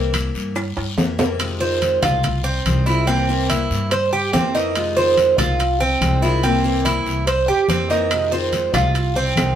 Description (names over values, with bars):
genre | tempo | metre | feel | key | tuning
latin, Cuban son and guajira | 143 BPM | 4/4 | straight | F minor | A4 = 440 Hz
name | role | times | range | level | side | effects
picked steel-string acoustic guitar | accompaniment | 0.0-9.6 s | C3 to F4 | -25 LUFS | left 6 dB | none
upright bass | bass | 0.0-9.6 s | C2 to G2 | -23 LUFS | equal | none
claves | percussion | 0.1-0.8, 8.1-9.6 s | none | -32 LUFS | left 2 dB | none
congas | percussion | 0.1-9.6 s | none | -25 LUFS | left 2 dB | none
guiro | percussion | 0.1-9.6 s | none | -32 LUFS | left 4 dB | none
timbales | percussion | 0.1-9.6 s | none | -25 LUFS | right 2 dB | none
Cuban tres | arpeggios | 1.6-9.6 s | C4 to C5 | -18 LUFS | right 3 dB | none
room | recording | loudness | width
moderate studio reverb, RT60 0.7 s | band playing live in one room | -16 LUFS | side -10 dB against mid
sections
0.0-1.4 A section; 1.4-9.6 B section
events
drum fill 0.6-1.4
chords
0.0 C7; 1.4 Fm7; 3.1 C7; 4.8 Fm7; 6.4 C7; 8.1 Fm7